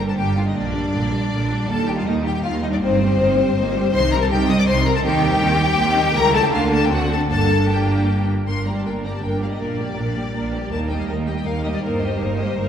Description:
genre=quick classical-period movement for string orchestra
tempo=160 BPM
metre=3/4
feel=straight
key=G minor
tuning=A4 = 441 Hz
part: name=clear symphonic violin section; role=second line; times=0.0-12.7 s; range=C4 to Eb5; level=-24 LUFS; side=left 2 dB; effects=none
part: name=rich symphonic viola section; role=accompaniment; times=0.0-12.7 s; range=D3 to G4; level=-24 LUFS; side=right 1 dB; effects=none
part: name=clear symphonic cello section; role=bass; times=0.0-12.7 s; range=Eb2 to Eb3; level=-24 LUFS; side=right 2 dB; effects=none
part: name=rich symphonic double bass section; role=bass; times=0.0-12.7 s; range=G1 to Eb2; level=-24 LUFS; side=right 2 dB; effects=none
part: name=rich symphonic violin section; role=melody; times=0.1-12.7 s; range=C5 to Eb6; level=-24 LUFS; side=left 6 dB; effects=none
room=wet concert hall reverb, RT60 2.0 s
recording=heard from further back in the room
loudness=-17 LUFS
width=side -8 dB against mid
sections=0.0-8.5 A section; 8.5-12.7 A section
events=none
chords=0.0 Gm; 0.6 Gm/Bb; 1.7 Eb; 2.8 Eb/G; 3.9 Cm; 5.0 Cm/Eb; 6.2 C#dim7; 6.5 Gm9/D; 6.9 D7; 7.3 Gm; 9.6 Gm/Bb; 10.7 Eb; 11.8 Eb/G

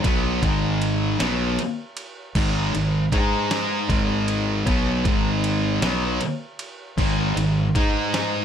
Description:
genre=quiet-loud alternative rock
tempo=52 BPM (dotted quarters)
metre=6/8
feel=straight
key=G# minor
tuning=A4 = 437 Hz
part: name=thick fuzz guitar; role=riff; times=0.0-8.4 s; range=G#2 to G#4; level=-25 LUFS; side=left 11 dB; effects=distortion
part: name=thick fuzz guitar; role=riff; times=0.0-8.4 s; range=G#2 to G#4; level=-24 LUFS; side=right 9 dB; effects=distortion
part: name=modern bright fingered electric bass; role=bass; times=0.0-8.4 s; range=G#1 to G#2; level=-26 LUFS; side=equal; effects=none
part: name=dusty soul sampler-style drum kit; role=drums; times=0.0-8.3 s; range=crash cymbal, kick drum, ride cymbal, snare drum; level=-26 LUFS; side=equal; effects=none
room=light reverb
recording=none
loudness=-20 LUFS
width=side -8 dB against mid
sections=0.0-8.4 A section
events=none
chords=0.0 G#m

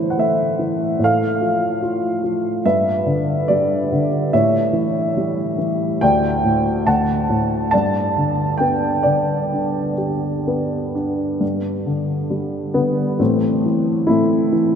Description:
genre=classical, lyrical solo piano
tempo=60-74 BPM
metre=4/4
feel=rubato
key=G major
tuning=A4 = 440 Hz
part: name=dark upright piano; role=solo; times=0.0-14.8 s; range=D2 to A5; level=-16 LUFS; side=equal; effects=none
room=wet cathedral reverb, RT60 5.6 s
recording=in a vast, echoing space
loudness=-16 LUFS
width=side -7 dB against mid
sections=0.0-11.4 A section; 11.4-14.8 A section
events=none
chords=0.0 Am; 1.0 F/A; 2.6 G; 4.3 A7; 6.0 Dsus4; 6.9 D; 7.7 G; 11.4 G5; 13.2 Am

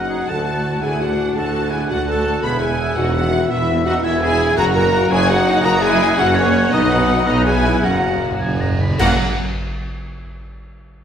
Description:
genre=cinematic, heroic adventure film score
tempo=103-113 BPM (dotted quarters)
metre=12/8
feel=straight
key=F# mixolydian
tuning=A4 = 440 Hz
part: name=warm symphonic violin section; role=melody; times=0.0-9.2 s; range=C#5 to B5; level=-26 LUFS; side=left 2 dB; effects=none
part: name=clear oboe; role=second line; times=0.0-9.2 s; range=G#4 to B5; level=-26 LUFS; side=equal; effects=none
part: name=silver concert flute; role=second line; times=0.0-9.2 s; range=C#5 to B5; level=-26 LUFS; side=left 1 dB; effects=none
part: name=warm symphonic violin section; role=second line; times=0.0-9.2 s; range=C#5 to B5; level=-29 LUFS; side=left 1 dB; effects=none
part: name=rich chamber viola section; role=accompaniment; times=0.0-9.2 s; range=D#3 to G#4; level=-24 LUFS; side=equal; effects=none
part: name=mellow trombone section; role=sustained chords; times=0.0-9.2 s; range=A2 to D4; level=-28 LUFS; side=right 2 dB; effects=none
part: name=warm French horn section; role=sustained chords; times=0.0-9.2 s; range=C#4 to B4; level=-21 LUFS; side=left 2 dB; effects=none
part: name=mellow trumpet section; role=stabs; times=0.0-9.2 s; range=E5 to F#5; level=-26 LUFS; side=equal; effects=none
part: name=rich symphonic double bass section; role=bass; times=0.0-9.2 s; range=E1 to D2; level=-25 LUFS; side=right 2 dB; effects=none
part: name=warm symphonic cello section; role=bass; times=0.0-9.2 s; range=D2 to B2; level=-25 LUFS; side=right 2 dB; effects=none
part: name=warm tuba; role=bass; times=0.0-9.2 s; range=E1 to D2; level=-24 LUFS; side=right 1 dB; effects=none
part: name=cymbal swell, clash cymbals and concert bass drum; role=percussion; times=4.6-9.7 s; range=none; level=-28 LUFS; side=equal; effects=none
part: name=timpani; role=percussion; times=4.6-9.2 s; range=F#2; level=-25 LUFS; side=right 1 dB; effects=none
room=wet recital hall reverb, RT60 1.5 s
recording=recorded in a church or concert hall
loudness=-14 LUFS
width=side -8 dB against mid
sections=0.0-9.0 A section; 9.0-11.0 B section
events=slowing down 5.3-9.0; timpani fill 7.8-9.0; band accent 9.0-9.4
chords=0.3 D; 2.4 E; 4.6 F#; 6.7 B; 7.8 F#

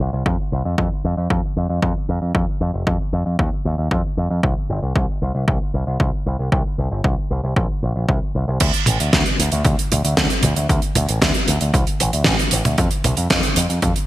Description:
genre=italo disco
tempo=115 BPM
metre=4/4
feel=straight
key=unclear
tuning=A4 = 440 Hz
part: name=picked electric bass with an envelope filter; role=bass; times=0.0-13.9 s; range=F1 to F2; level=-20 LUFS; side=equal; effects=digital delay
part: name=electronic kick drum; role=drums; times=0.3-13.9 s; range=none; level=-21 LUFS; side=equal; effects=overdrive
part: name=damped 70s drum kit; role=drums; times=8.6-14.1 s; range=crash cymbal, hi-hat, snare drum, toms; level=-19 LUFS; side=right 1 dB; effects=gated reverb
room=light reverb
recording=bright 1980s-style digital production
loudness=-17 LUFS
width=side -16 dB against mid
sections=0.0-8.6 A section; 8.6-14.1 B section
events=none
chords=none

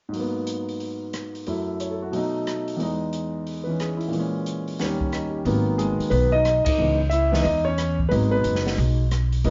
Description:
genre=jazz piano trio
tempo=180 BPM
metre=4/4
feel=swing 64% on 8ths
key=G# minor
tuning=A4 = 440 Hz
part: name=warm concert grand piano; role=melody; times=0.1-9.5 s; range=D#2 to E5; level=-26 LUFS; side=equal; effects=none
part: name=open jazz drum kit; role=drums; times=0.1-9.5 s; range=hi-hat, kick drum, ride cymbal, rim click, snare drum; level=-34 LUFS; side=equal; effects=none
part: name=upright bass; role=bass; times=5.5-9.5 s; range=F#1 to E2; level=-25 LUFS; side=equal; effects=none
room=moderate studio reverb, RT60 0.7 s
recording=heard from further back in the room, nothing above 7.5 kHz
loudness=-24 LUFS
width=mono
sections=0.1-5.5 A section; 5.5-9.5 B section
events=break 5.1-5.5; band accent 6.6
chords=0.1 G#m9; 1.5 F#m7; 2.1 B7; 2.8 Emaj7; 4.1 A#m7b5; 4.8 D#7; 5.5 G#m9; 6.8 C#m9; 8.1 G#m7

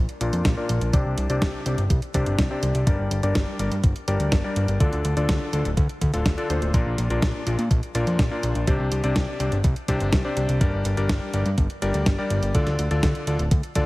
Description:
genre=italo disco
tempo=124 BPM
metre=4/4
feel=straight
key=unclear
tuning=A4 = 438 Hz
part: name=fat analog bass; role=bass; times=0.0-13.9 s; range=D1 to Bb2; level=-24 LUFS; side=equal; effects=none
part: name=clean 12-bit digital drum machine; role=drums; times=0.1-13.9 s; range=hi-hat, snare drum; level=-29 LUFS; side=equal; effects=small room ambience
part: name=bright electric grand piano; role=stabs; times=0.2-13.9 s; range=Bb2 to F5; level=-27 LUFS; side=left 2 dB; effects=vintage 12-bit sampler grit, low-pass filter, digital delay
part: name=electronic kick drum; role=drums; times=0.5-13.9 s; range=none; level=-22 LUFS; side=equal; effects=small room ambience
room=light reverb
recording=heavily compressed radio sound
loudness=-20 LUFS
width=side -20 dB against mid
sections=0.0-13.9 A section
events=filter sweep on electric grand piano 0.0-13.9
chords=0.0 Bb; 0.9 Csus2; 2.9 Gm; 4.8 Dm; 6.7 Bb; 8.7 Csus2; 10.6 Gm; 12.5 Dm

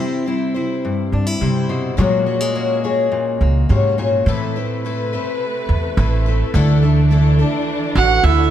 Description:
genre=folk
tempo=105 BPM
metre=4/4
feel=straight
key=D mixolydian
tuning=A4 = 440 Hz
part: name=fingerpicked steel-string acoustic guitar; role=accompaniment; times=0.0-4.3 s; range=G2 to G#4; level=-22 LUFS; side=left 2 dB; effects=none
part: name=picked twelve-string acoustic guitar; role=accompaniment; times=0.0-8.5 s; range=A2 to C#5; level=-21 LUFS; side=left 4 dB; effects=none
part: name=upright bass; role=bass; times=0.0-8.5 s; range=A1 to C3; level=-17 LUFS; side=right 1 dB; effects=none
part: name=warm studio string section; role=sustained chords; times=4.3-8.5 s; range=C3 to B4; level=-24 LUFS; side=equal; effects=none
part: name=warm fiddle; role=melody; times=8.0-8.5 s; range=E5 to F#5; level=-15 LUFS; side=right 6 dB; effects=none
part: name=breathy bass bansuri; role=second line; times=8.0-8.5 s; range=E4 to F#4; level=-19 LUFS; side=right 9 dB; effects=none
room=light reverb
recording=none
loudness=-15 LUFS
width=side -10 dB against mid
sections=0.0-8.5 A section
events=build-up 0.0-8.5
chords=0.0 C; 2.0 F#add9/A#; 4.3 Amadd9; 6.5 Dsus2

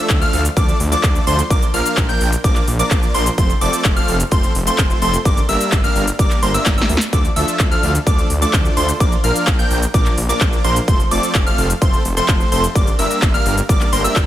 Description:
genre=EDM, festival progressive house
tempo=128 BPM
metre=4/4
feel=straight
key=D minor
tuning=A4 = 440 Hz
part: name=plucky unison lead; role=arpeggios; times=0.0-14.2 s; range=C6 to G6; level=-21 LUFS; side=equal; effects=sidechain pumping, digital delay
part: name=supersaw chords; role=riff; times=0.0-14.2 s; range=F3 to G5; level=-21 LUFS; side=equal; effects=sidechain pumping, digital delay
part: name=detuned saw bass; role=bass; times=0.1-14.3 s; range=F1 to D2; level=-21 LUFS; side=equal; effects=sidechain pumping
part: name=big-room dance drum kit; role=drums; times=0.1-14.3 s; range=handclaps, hi-hat, shaker, snare drum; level=-22 LUFS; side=equal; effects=none
part: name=electronic kick drum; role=drums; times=0.1-14.3 s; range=none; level=-16 LUFS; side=equal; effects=none
room=little or no reverb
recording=none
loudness=-13 LUFS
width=side -13 dB against mid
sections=0.0-14.3 A section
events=drum fill 6.7-7.1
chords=0.0 Dm; 1.5 Bb; 3.4 F; 5.3 Gm; 7.1 Dm; 9.0 Bb; 10.9 F; 12.8 Gm

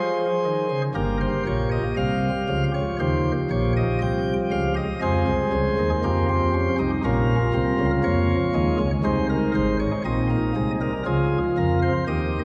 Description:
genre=classical, baroque-style 4-part fugue for pipe organ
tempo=59 BPM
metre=4/4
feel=straight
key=unclear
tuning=A4 = 443 Hz
part: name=chamber organ, sparkling flutes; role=solo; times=0.0-12.4 s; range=G1 to G5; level=-23 LUFS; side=equal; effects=none
room=wet church reverb, RT60 3.1 s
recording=heard from further back in the room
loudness=-23 LUFS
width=mono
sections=1.0-12.4 A section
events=none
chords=0.0 Ab; 1.0 Gm7b5; 3.0 Cm; 5.0 Fm7; 7.0 Bbm; 9.1 Ab; 11.1 Db

